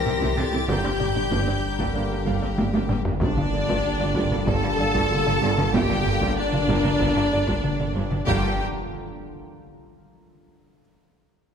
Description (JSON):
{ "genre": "cinematic, hybrid orchestral and electronic film score", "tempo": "95 BPM", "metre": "4/4", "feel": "straight", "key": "G minor", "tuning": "A4 = 438 Hz", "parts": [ { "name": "rich symphonic violin section", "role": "melody", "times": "0.0-8.6 s", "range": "D5 to Bb6", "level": "-31 LUFS", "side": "left 3 dB", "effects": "none" }, { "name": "clear chamber violin section", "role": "second line", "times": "0.0-8.6 s", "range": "D4 to G5", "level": "-29 LUFS", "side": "left 2 dB", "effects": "none" }, { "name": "analog drone", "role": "sustained chords", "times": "0.0-8.6 s", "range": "D3 to C5", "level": "-32 LUFS", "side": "equal", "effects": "chorus" }, { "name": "mellow French horn section", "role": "sustained chords", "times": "0.0-8.5 s", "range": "D4 to Bb4", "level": "-34 LUFS", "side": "left 8 dB", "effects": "none" }, { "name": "punchy sub bass", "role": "bass", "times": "0.0-8.6 s", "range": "G1 to C2", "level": "-32 LUFS", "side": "equal", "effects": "none" }, { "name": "clear concert grand piano", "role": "texture", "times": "0.0-8.3 s", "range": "D4 to F5", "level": "-37 LUFS", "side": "left 3 dB", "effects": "none" }, { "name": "warm symphonic viola section", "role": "accompaniment", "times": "0.1-8.6 s", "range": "Bb3 to A4", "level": "-30 LUFS", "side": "left 1 dB", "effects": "none" }, { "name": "soft round pluck", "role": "arpeggios", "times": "0.1-8.2 s", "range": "C3 to F4", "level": "-34 LUFS", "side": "right 2 dB", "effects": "none" }, { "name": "rich symphonic cello section", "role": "bass", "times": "0.1-8.6 s", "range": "G2 to C3", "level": "-30 LUFS", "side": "right 2 dB", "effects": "none" }, { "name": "rich symphonic double bass section", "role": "bass", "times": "0.1-8.6 s", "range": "G1 to C2", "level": "-30 LUFS", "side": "right 4 dB", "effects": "none" }, { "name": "taiko ensemble", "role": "drums", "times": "0.1-8.4 s", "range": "none", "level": "-27 LUFS", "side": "equal", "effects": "none" }, { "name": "clear trombone section", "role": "sustained chords", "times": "0.7-8.5 s", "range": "D3 to Bb3", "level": "-37 LUFS", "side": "right 3 dB", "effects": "none" }, { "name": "impact", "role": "sound effects", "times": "3.2-10.8 s", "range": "none", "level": "-32 LUFS", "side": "equal", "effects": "none" } ], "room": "moderate concert hall reverb, RT60 2.1 s", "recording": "none", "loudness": "-20 LUFS", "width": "side -7 dB against mid", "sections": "0.0-3.2 A section; 3.2-8.3 B section; 8.3-10.8 C section", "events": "drum fill 2.6-3.2; impact 3.2-5.7, 8.3-10.8", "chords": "0.0 C; 0.7 Gm; 3.2 Gm7" }